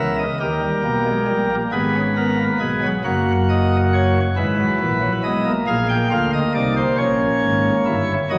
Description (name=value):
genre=classical, baroque-style 4-part fugue for pipe organ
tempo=46 BPM (dotted quarters)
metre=6/8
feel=straight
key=unclear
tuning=A4 = 442 Hz
part: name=pipe organ, sparkling flutes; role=solo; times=0.0-8.4 s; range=F#1 to G5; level=-19 LUFS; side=equal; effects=none
room=wet scoring stage reverb, RT60 1.6 s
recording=vinyl crackle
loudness=-19 LUFS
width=mono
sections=0.0-8.4 A section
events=none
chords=0.4 D#; 1.7 G#m; 3.0 D#m/F#; 4.4 E/G#; 5.7 A#7; 7.0 Gdim7